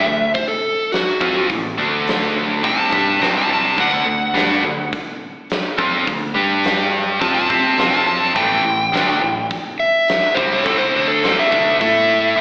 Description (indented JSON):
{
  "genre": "blues rock power trio and southern rock",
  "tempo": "105 BPM",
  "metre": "4/4",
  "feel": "straight",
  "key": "unclear",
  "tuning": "A4 = 443 Hz",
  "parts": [
    { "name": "overdriven slide guitar", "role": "melody", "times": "0.0-12.4 s", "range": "F#4 to A5", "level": "-17 LUFS", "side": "equal", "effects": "slapback echo" },
    { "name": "distorted electric guitar", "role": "riff", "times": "0.0-12.4 s", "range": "A2 to C5", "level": "-17 LUFS", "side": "equal", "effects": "overdrive, slapback echo" },
    { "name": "growling picked electric bass", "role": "bass", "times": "0.0-12.4 s", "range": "A1 to C3", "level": "-25 LUFS", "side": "equal", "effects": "overdrive" },
    { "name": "big rock drum kit", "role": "drums", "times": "0.3-11.9 s", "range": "hi-hat, kick drum, snare drum", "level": "-24 LUFS", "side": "equal", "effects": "none" }
  ],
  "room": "light reverb",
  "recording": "live gig heard through the venue's PA, recital hall reverb, AM radio sound",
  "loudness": "-14 LUFS",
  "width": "side -29 dB against mid",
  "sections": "0.0-12.4 A section",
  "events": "none",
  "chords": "0.0 D7; 1.5 A5; 1.8 D5; 2.6 Gsus24/C; 3.2 C5; 3.8 D; 6.4 G5; 7.2 Fadd9; 7.8 F5; 8.4 A5"
}